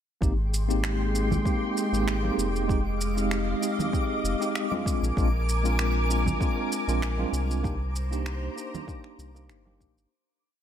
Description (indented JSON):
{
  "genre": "sunset chillout",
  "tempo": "97 BPM",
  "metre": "4/4",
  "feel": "swing 54% on 16ths",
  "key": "Ab lydian",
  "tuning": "A4 = 439 Hz",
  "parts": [
    { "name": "tine electric piano", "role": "accompaniment", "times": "0.2-10.1 s", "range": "Ab3 to G4", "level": "-31 LUFS", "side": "moving between left 6 dB and right 6 dB", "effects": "medium stereo tremolo, auto-pan, digital delay" },
    { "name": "soft string machine", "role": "sustained chords", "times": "0.4-10.1 s", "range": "Ab3 to D6", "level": "-32 LUFS", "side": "equal", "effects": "ensemble chorus" },
    { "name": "warm sub bass", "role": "bass", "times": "0.2-10.1 s", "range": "F1 to C2", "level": "-28 LUFS", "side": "equal", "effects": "none" },
    { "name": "electronic kick drum", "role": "drums", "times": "0.2-9.9 s", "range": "none", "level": "-28 LUFS", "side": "equal", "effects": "none" },
    { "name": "electronic shaker and finger snaps", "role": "drums", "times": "0.2-10.1 s", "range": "none", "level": "-36 LUFS", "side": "right 1 dB", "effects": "none" },
    { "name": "twinkling granular texture", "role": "texture", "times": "1.3-10.1 s", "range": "D6", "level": "-38 LUFS", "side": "equal", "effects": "built-in reverb" },
    { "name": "congas and bongos", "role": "percussion", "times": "1.3-9.8 s", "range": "none", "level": "-34 LUFS", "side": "right 4 dB", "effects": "none" }
  ],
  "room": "light reverb",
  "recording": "none",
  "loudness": "-24 LUFS",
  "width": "side -9 dB against mid",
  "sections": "0.2-10.1 groove",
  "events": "fade-out 6.8-10.1",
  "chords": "0.2 Abmaj7; 2.7 Fm7; 4.9 Bb7; 7.6 Cm7",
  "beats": "| 0.22 0.84 1.46 2.07 | 2.69 3.31 3.93 4.55 | 5.17 5.79 6.40 7.02 | 7.64 8.26 8.88 9.50"
}